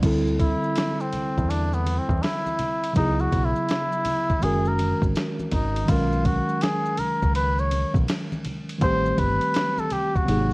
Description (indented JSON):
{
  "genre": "hip hop, jazz-hop",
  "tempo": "82 BPM",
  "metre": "4/4",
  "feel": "swing 65% on 16ths",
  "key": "unclear",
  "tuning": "A4 = 440 Hz",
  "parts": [
    { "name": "mellow tine electric piano", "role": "accompaniment", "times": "0.0-10.5 s", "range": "B#2 to A#4", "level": "-26 LUFS", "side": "right 1 dB", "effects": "medium stereo tremolo" },
    { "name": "deep dub picked electric bass", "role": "bass", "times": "0.0-10.5 s", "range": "F#1 to E2", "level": "-25 LUFS", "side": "equal", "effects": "tube saturation" },
    { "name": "dusty soul sampler-style drum kit", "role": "drums", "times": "0.0-10.5 s", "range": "crash cymbal, hi-hat, kick drum, ride cymbal, snare drum", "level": "-27 LUFS", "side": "equal", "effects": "none" },
    { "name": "maracas and congas", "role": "percussion", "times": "0.0-10.5 s", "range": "none", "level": "-36 LUFS", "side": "equal", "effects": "none" },
    { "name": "trumpet with cup mute", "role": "melody", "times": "0.4-10.5 s", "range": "B3 to C#5", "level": "-25 LUFS", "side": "equal", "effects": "none" }
  ],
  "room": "digital ambience",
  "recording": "worn, warbling old tape, cassette tape, vinyl crackle, warbly pitch drift",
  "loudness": "-21 LUFS",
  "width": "side -24 dB against mid",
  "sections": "0.0-10.5 A section",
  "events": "muted trumpet solo 0.0-10.5",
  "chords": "0.0 Dsus2; 3.0 C#m7; 4.4 F#; 5.9 Bmaj7; 8.8 Am7b5"
}